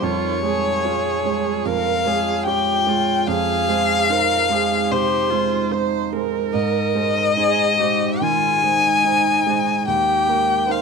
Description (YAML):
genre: neoclassical piano and strings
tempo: 73 BPM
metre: 4/4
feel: rubato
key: Ab major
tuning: A4 = 439 Hz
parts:
  - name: rich violin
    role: melody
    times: 0.0-10.8 s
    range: C5 to Ab5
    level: -19 LUFS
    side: left 6 dB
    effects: none
  - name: felt-muted upright piano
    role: accompaniment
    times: 0.0-10.8 s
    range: Eb2 to Db5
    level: -24 LUFS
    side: right 10 dB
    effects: none
  - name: rich viola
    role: accompaniment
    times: 0.0-10.8 s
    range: Eb4 to C5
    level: -25 LUFS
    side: right 15 dB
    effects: none
  - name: deep dark ambient pad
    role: sustained chords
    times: 0.0-10.8 s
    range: Ab3 to Db5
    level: -28 LUFS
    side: left 1 dB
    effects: chorus, built-in reverb
room: moderate spring reverb, RT60 1.5 s, studio reverb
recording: 1960s-style stereo with parts hard left and right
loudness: -17 LUFS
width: side -5 dB against mid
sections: 0.0-10.8 A section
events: none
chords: 0.0 Db/F; 3.3 Fm7; 6.5 Ab; 9.9 Eb